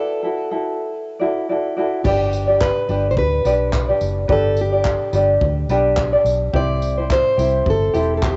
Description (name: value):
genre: acoustic pop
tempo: 107 BPM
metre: 4/4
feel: swing 55% on 16ths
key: G major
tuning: A4 = 439 Hz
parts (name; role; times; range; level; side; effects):
- fingerpicked plugged-in steel-string acoustic guitar; melody; 0.0-8.4 s; G4 to D5; -24 LUFS; equal; cassette tape, tape echo
- tenor ukulele; accompaniment; 0.0-8.4 s; C4 to D5; -22 LUFS; equal; cassette tape
- vintage muted fingered electric bass; bass; 2.0-8.4 s; E1 to D2; -24 LUFS; equal; none
- compact cocktail drum kit; drums; 2.0-8.4 s; crash cymbal, handclaps, kick drum, tambourine; -26 LUFS; equal; none
room: moderate spring reverb, RT60 2.4 s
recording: home recording on cassette, nothing above 7.8 kHz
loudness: -18 LUFS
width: mono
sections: 0.0-2.0 A section; 2.0-8.4 B section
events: break 0.0-2.0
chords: 0.0 Dadd9; 2.0 G; 6.5 C